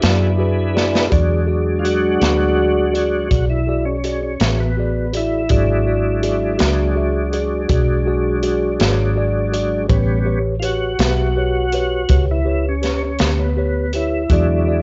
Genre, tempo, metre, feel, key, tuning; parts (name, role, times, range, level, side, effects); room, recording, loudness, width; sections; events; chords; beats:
slow blues; 55 BPM (dotted quarters); 12/8; straight; E mixolydian; A4 = 440 Hz
mellow tine electric piano; accompaniment; 0.0-14.8 s; F#4 to E5; -25 LUFS; equal
tonewheel organ; sustained chords; 0.0-14.8 s; F#3 to B4; -23 LUFS; equal; slow rotary speaker, chorus vibrato
vintage muted fingered electric bass; bass; 0.0-14.8 s; G#1 to F#2; -22 LUFS; equal
crunchy breakbeat drum kit; drums; 0.0-14.5 s; hi-hat, kick drum, snare drum; -23 LUFS; equal
light reverb; worn, warbling old tape, cassette tape, warbly pitch drift, nothing above 7.8 kHz; -18 LUFS; mono
0.0-1.1 A section; 1.1-14.8 B section
drum fill 0.8-1.1; tonewheel organ solo 1.1-14.8
0.0 E7; 9.9 A7; 14.3 E7
0.03 | 1.12 2.22 3.31 4.41 | 5.51 6.61 7.71 8.80 | 9.90 11.00 12.10 13.20 | 14.30